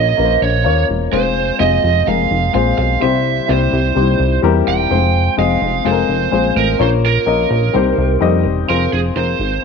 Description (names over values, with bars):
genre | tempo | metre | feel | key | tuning
piano-driven pop | 127 BPM | 4/4 | straight | F minor | A4 = 441 Hz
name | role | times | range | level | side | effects
lead guitar through a small cranked amp | melody | 0.0-9.6 s | Ab4 to G5 | -18 LUFS | right 13 dB | overdrive
dark upright piano | accompaniment | 0.0-9.6 s | Bb2 to Eb5 | -17 LUFS | left 11 dB | none
chorused synth bass | bass | 0.0-9.6 s | E1 to F2 | -17 LUFS | right 1 dB | none
room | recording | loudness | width
light reverb, small room ambience | 1960s-style stereo with parts hard left and right, nothing above 7.8 kHz | -12 LUFS | side -5 dB against mid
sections
0.0-8.7 A section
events
none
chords
0.0 Bbm; 1.1 Fm; 3.0 C; 4.9 Fm; 6.8 Bbm; 7.7 Cm; 8.7 Fm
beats
0.18 0.65 | 1.13 1.60 2.07 2.54 | 3.02 3.49 3.96 4.43 | 4.91 5.38 5.85 6.32 | 6.80 7.27 7.74 8.21 | 8.69 9.16 9.63